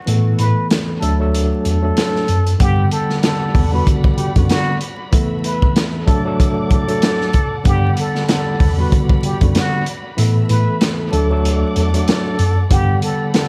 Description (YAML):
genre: hip hop, boom-bap hip-hop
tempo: 95 BPM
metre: 4/4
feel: swing 57% on 16ths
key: unclear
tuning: A4 = 438 Hz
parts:
  - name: tine electric piano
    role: accompaniment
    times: 0.1-13.5 s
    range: D3 to F#5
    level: -22 LUFS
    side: equal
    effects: cassette tape, high-pass filter, low-pass filter, dub echo
  - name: mellow tine electric piano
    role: bass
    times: 0.1-13.0 s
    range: D2 to A2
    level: -19 LUFS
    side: equal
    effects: none
  - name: crunchy breakbeat drum kit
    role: drums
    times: 0.1-13.5 s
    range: hi-hat, kick drum, snare drum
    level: -20 LUFS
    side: equal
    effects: none
  - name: trumpet with plunger mute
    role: melody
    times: 0.4-13.5 s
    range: F#4 to B4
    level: -26 LUFS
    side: equal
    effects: high-pass filter, low-pass filter, dub echo
  - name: warm studio string section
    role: sustained chords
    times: 2.6-13.5 s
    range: G3 to D6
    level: -33 LUFS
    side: equal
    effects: high-pass filter, low-pass filter
room: studio ambience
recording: echo-heavy mix, vinyl crackle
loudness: -16 LUFS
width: mono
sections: 0.0-2.6 A section; 2.6-13.5 B section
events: break 0.1-2.6; kick muted 10.2-12.7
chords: 0.1 Asus2; 1.0 D; 2.6 Gmaj7; 5.1 Asus2; 6.1 D; 7.7 Gmaj7; 10.2 Asus2; 11.1 D; 12.7 Gmaj7